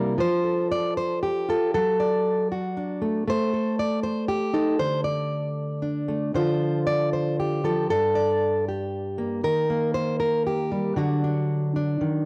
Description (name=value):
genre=folk, solo fingerstyle acoustic guitar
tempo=117 BPM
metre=3/4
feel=straight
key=unclear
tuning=A4 = 440 Hz
part: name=fingerpicked plugged-in steel-string acoustic guitar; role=solo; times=0.0-12.3 s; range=G2 to D5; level=-25 LUFS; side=equal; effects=none
room=light reverb, studio reverb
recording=home recording on cassette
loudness=-25 LUFS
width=mono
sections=0.2-12.3 A section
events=none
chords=0.2 F; 1.7 D/F#; 3.3 Adim; 4.8 D5; 6.4 Dm; 7.9 Gm; 9.4 Eb; 11.0 D